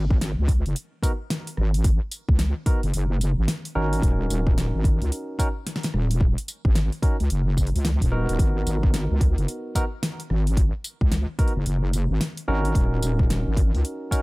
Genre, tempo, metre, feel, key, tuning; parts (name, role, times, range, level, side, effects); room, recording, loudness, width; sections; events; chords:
glitch hop; 110 BPM; 4/4; swing 62% on 16ths; G# minor; A4 = 441 Hz
wobble bass; bass; 0.0-13.8 s; D#1 to C#2; -22 LUFS; equal; chorus, overdrive
electronic kick drum; drums; 0.1-14.2 s; -21 LUFS; equal
pop drum kit; drums; 0.2-14.2 s; hi-hat, rim click, snare drum, tambourine; -30 LUFS; left 1 dB
barky tine electric piano; stabs; 1.0-14.2 s; B3 to A#4; -30 LUFS; right 1 dB; sidechain pumping, digital delay
little or no reverb; -21 LUFS; side -22 dB against mid
0.0-14.2 A section
0.0 G#7sus2; 4.0 D#m7; 8.4 G#m9; 12.8 D#m7